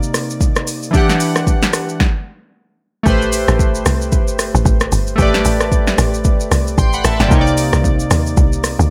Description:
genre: amapiano.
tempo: 113 BPM.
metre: 4/4.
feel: swing 58% on 16ths.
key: A dorian.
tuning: A4 = 442 Hz.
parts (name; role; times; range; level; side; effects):
warm analog keys; accompaniment; 0.0-8.9 s; C3 to C6; -20 LUFS; equal; chorus.
deep house drum kit; drums; 0.0-8.9 s; hi-hat, kick drum, rim click, shaker, snare drum; -18 LUFS; equal; none.
tight log drum bass; bass; 3.1-8.9 s; G1 to Eb2; -19 LUFS; equal; none.
room: digital ambience.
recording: none.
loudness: -15 LUFS.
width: mono.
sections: 0.0-3.1 A section; 3.1-8.9 B section.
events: stop 2.0-3.1; drop 3.1-8.9.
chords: 0.0 Cm9; 0.9 Em9; 3.1 Am9; 7.3 Cm9.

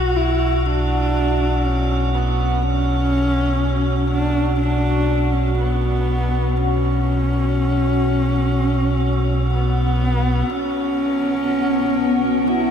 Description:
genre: dark ambient drone.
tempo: free time.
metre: none.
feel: none.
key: B minor.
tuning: A4 = 440 Hz.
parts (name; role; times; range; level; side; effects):
dark horsehead fiddle; melody; 0.0-12.7 s; B3 to F#4; -21 LUFS; equal; tape echo.
deep rumbling drone; drone; 0.0-12.7 s; B1 to B2; -20 LUFS; equal; built-in reverb, wide subtle chorus.
metallic inharmonic drone; texture; 0.0-12.7 s; B3 to F#4; -24 LUFS; left 1 dB; chorus, built-in reverb.
granular cloud pad; sustained chords; 10.9-12.7 s; B3 to F#4; -23 LUFS; right 1 dB; built-in reverb.
room: moderate huge ambient reverb, RT60 8.1 s.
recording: none.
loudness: -17 LUFS.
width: side -8 dB against mid.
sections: 0.0-10.5 A section; 10.5-12.7 B section.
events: none.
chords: 0.0 Bmadd9; 10.5 Bsus2.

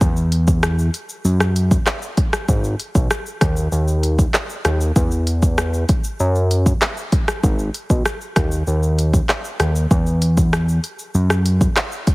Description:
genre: dancehall.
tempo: 97 BPM.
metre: 4/4.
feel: straight.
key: G# minor.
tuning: A4 = 439 Hz.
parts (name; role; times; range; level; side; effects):
fat analog bass; bass; 0.0-11.7 s; G#1 to F#2; -17 LUFS; equal; none.
afro-pop drum kit; drums; 0.0-12.1 s; handclaps, hi-hat, kick drum, rim click, shaker; -18 LUFS; equal; none.
room: little or no reverb.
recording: heavily compressed radio sound.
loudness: -16 LUFS.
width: side -22 dB against mid.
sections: 0.0-12.1 A section.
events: none.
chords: none.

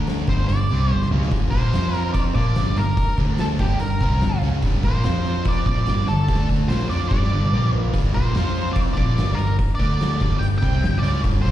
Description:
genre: blues rock power trio and southern rock.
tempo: 145 BPM.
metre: 4/4.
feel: straight.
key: G minor.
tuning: A4 = 439 Hz.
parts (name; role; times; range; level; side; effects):
fuzz guitar; riff; 0.0-11.5 s; G2 to G4; -25 LUFS; equal; distortion, slapback echo.
vintage muted fingered electric bass; bass; 0.0-11.5 s; G1 to G2; -22 LUFS; equal; none.
oversized low-tuned drum kit; drums; 0.1-11.5 s; hi-hat, kick drum, snare drum, toms; -23 LUFS; equal; none.
octave-fuzz lead guitar; melody; 0.3-11.5 s; G4 to G5; -28 LUFS; right 1 dB; distortion, slapback echo, analog delay.
room: little or no reverb.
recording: live gig heard through the venue's PA, recital hall reverb.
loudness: -18 LUFS.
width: side -13 dB against mid.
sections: 0.0-11.5 A section.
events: drum fill 0.9-1.3, 7.1-7.9.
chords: 0.3 Gm; 1.7 F5; 2.4 Gm; 3.2 D5; 3.6 Gm; 5.0 F5; 5.7 Gm; 6.3 D5; 6.7 Gm; 7.5 Bb5; 7.9 Gm; 8.3 F5; 9.0 Gm; 9.8 D5; 10.2 Gm.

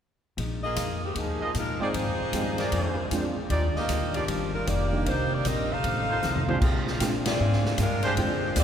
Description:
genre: jazz, big band swing.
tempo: 154 BPM.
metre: 4/4.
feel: swing 65% on 8ths.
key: Bb mixolydian.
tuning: A4 = 439 Hz.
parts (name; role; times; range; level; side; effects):
hollow-body jazz guitar; accompaniment; 0.4-8.6 s; F2 to G4; -34 LUFS; left 3 dB; none.
upright bass; bass; 0.4-8.6 s; F1 to Bb2; -29 LUFS; equal; none.
swinging big-band drum kit; drums; 0.4-8.6 s; crash cymbal, hi-hat, kick drum, ride cymbal, snare drum, toms; -32 LUFS; equal; none.
clear saxophone section; melody; 0.6-8.6 s; Eb3 to F5; -30 LUFS; left 1 dB; none.
warm trumpet section; stabs; 1.4-8.1 s; D4 to Eb5; -34 LUFS; right 2 dB; none.
dark concert grand piano; accompaniment; 1.8-8.6 s; Bb2 to G5; -33 LUFS; right 2 dB; none.
room: wet cathedral reverb, RT60 5.6 s.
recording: recorded in a church or concert hall.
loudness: -24 LUFS.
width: side -9 dB against mid.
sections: 0.4-6.6 A section; 6.6-8.6 B section.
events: drum fill 6.2-6.6; band accent 7.2.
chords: 0.4 Bb7sus4; 1.9 Fm7; 2.7 Bb7; 3.5 Ebmaj9; 5.1 Cm7; 5.8 F7; 6.6 Bb13.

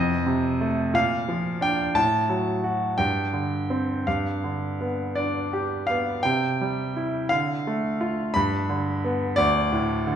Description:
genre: classical, lyrical solo piano.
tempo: 57 BPM (dotted quarters).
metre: 6/8.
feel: uneven beats, rubato.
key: unclear.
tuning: A4 = 438 Hz.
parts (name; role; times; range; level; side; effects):
clear grand piano; solo; 0.0-10.2 s; D2 to B5; -22 LUFS; equal; none.
room: wet recital hall reverb, RT60 1.5 s.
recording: recorded in a church or concert hall.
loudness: -22 LUFS.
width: side -9 dB against mid.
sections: 0.0-10.2 A section.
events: none.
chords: 0.0 F7; 0.9 Bb; 2.0 F#m/A; 3.0 Gsus4; 4.1 G; 6.2 C; 7.3 Dm; 8.3 G; 9.4 D5.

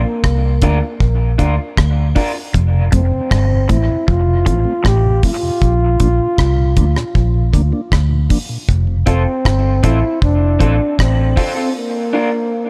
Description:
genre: dub reggae.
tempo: 78 BPM.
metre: 4/4.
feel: straight.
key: F major.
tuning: A4 = 440 Hz.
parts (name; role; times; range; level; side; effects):
breathy trombone; melody; 0.0-12.7 s; Bb3 to G4; -22 LUFS; equal; dub echo.
vintage muted fingered electric bass; bass; 0.0-11.3 s; F1 to D2; -17 LUFS; equal; none.
deep reggae drum kit; drums; 0.2-11.6 s; hi-hat, kick drum, rim click; -19 LUFS; equal; none.
electric guitar through a small old amp; accompaniment; 0.6-2.4, 9.1-12.3 s; C4 to Bb4; -25 LUFS; equal; harmonic tremolo, dub echo.
semi-hollow electric guitar; riff; 2.5-5.1 s; F2 to A2; -26 LUFS; equal; dub echo.
mellow tonewheel organ; accompaniment; 2.7-9.0 s; F2 to D4; -26 LUFS; equal; slow rotary speaker.
room: little or no reverb.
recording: echo-heavy mix.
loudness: -15 LUFS.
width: mono.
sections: 0.0-12.7 A section.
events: break 0.0-2.5, 11.8-12.7.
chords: 0.0 Bb; 2.5 F; 5.6 Bb; 8.7 F; 11.8 Bb.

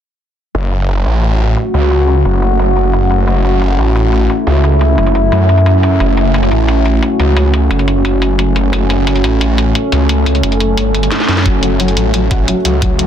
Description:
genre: dark technical drum and bass.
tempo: 176 BPM.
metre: 4/4.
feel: straight.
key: F# minor.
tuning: A4 = 440 Hz.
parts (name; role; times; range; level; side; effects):
deep dark ambient pad; sustained chords; 1.2-13.1 s; A3 to A4; -14 LUFS; equal; chorus, built-in reverb, sidechain pumping.
snarling distorted saw bass; bass; 0.5-13.1 s; F#1 to F#2; -12 LUFS; equal; distortion, tube saturation.
drum and bass drum kit; drums; 0.5-13.1 s; hi-hat, snare drum; -20 LUFS; equal; low-pass filter on hats, low-pass filter on snare, low-pass filter on room.
felt-muted upright piano; arpeggios; 11.5-13.1 s; F#3 to F#4; -17 LUFS; left 4 dB; vintage 12-bit sampler grit, sidechain pumping, digital delay.
electronic kick drum; drums; 11.5-12.9 s; none; -15 LUFS; equal; none.
room: light reverb.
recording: dense, heavily limited modern master.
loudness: -10 LUFS.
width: side -9 dB against mid.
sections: 0.5-13.1 A section.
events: filter sweep on drum 0.5-13.1; drum fill 11.1-11.5.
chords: 0.5 F#m.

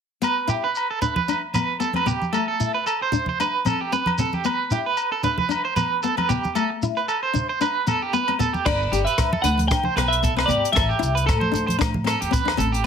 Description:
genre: highlife guitar band.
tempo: 114 BPM.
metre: 4/4.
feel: swing 55% on 16ths.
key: G major.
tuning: A4 = 442 Hz.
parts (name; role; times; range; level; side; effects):
nylon-string guitar; accompaniment; 0.2-12.9 s; A3 to G4; -27 LUFS; left 11 dB; none.
electric guitar at the edge of break-up; arpeggios; 0.2-12.9 s; G4 to C5; -24 LUFS; right 6 dB; tremolo, slapback echo.
agogo bells; percussion; 0.2-12.6 s; none; -31 LUFS; left 12 dB; none.
shekere; percussion; 0.2-12.8 s; none; -28 LUFS; right 2 dB; none.
congas; percussion; 1.0-12.7 s; none; -29 LUFS; right 2 dB; none.
semi-hollow electric guitar; melody; 8.7-11.8 s; A4 to G5; -24 LUFS; left 2 dB; analog chorus.
upright bass; bass; 8.7-12.9 s; G1 to A2; -25 LUFS; equal; none.
compact cocktail drum kit; drums; 8.7-12.8 s; crash cymbal, hi-hat, kick drum, rim click; -26 LUFS; equal; none.
room: light reverb.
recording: none.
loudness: -20 LUFS.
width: side -7 dB against mid.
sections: 0.2-8.7 A section; 8.7-12.9 B section.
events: none.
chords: 0.2 G; 2.3 Am; 4.4 G; 6.6 D5; 8.7 G; 10.8 Am7.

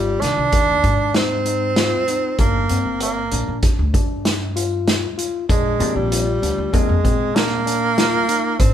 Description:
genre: progressive instrumental, band music in an uneven meter.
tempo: 97 BPM.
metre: 5/4.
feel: straight.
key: unclear.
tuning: A4 = 435 Hz.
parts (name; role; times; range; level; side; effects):
breathy tenor saxophone; melody; 0.0-8.7 s; G3 to D4; -20 LUFS; right 3 dB; none.
tine electric piano; arpeggios; 0.0-8.7 s; Eb3 to G4; -26 LUFS; left 7 dB; tape echo.
upright bass; bass; 0.0-8.7 s; G1 to Bb2; -24 LUFS; equal; none.
vintage drum kit; drums; 0.2-8.7 s; hi-hat, kick drum, snare drum; -20 LUFS; equal; none.
hollow-body jazz guitar; accompaniment; 5.8-7.0 s; C3 to F4; -24 LUFS; left 4 dB; none.
room: light reverb.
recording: band playing live in one room.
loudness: -16 LUFS.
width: side -10 dB against mid.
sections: 0.0-8.7 A section.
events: none.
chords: 0.0 Ab; 2.4 Gm7; 5.5 Bb.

